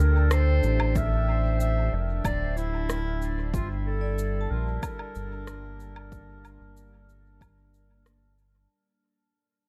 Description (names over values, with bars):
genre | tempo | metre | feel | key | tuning
ambient dub | 93 BPM | 4/4 | straight | unclear | A4 = 440 Hz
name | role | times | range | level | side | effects
warm clarinet | melody | 0.0-8.1 s | E4 to E5 | -34 LUFS | equal | dub echo
deep dark ambient pad | sustained chords | 0.0-8.7 s | G3 to A5 | -41 LUFS | equal | chorus, built-in reverb
vibraphone with hard mallets | arpeggios | 0.0-8.7 s | A4 to A5 | -48 LUFS | equal | dub echo
round analog bass | bass | 0.0-8.7 s | D1 to D2 | -28 LUFS | equal | none
electronic rim click, cabasa and woodblock | drums | 0.3-8.5 s | none | -36 LUFS | equal | dub echo
electronic kick drum | drums | 1.0-7.5 s | none | -34 LUFS | equal | overdrive
room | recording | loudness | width
little or no reverb | dark, warm production | -27 LUFS | mono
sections
0.0-8.7 A section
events
fade-out 0.0-8.7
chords
0.0 Dsus4; 3.5 Gmadd9